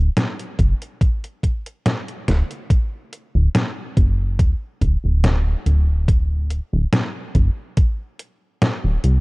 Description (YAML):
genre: vaporwave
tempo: 71 BPM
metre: 4/4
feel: straight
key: D mixolydian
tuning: A4 = 440 Hz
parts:
  - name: chorused synth bass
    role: bass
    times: 0.0-9.2 s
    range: D1 to C2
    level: -17 LUFS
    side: equal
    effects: none
  - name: detuned 8-bit digital drum machine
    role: drums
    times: 0.2-9.2 s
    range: hi-hat, snare drum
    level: -21 LUFS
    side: equal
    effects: none
  - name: electronic kick drum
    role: drums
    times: 0.6-8.0 s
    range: none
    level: -17 LUFS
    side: equal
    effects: none
room: little or no reverb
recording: dark, warm production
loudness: -18 LUFS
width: side -26 dB against mid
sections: 0.0-2.7 A section; 2.7-9.2 B section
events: drum fill 2.3-2.7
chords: none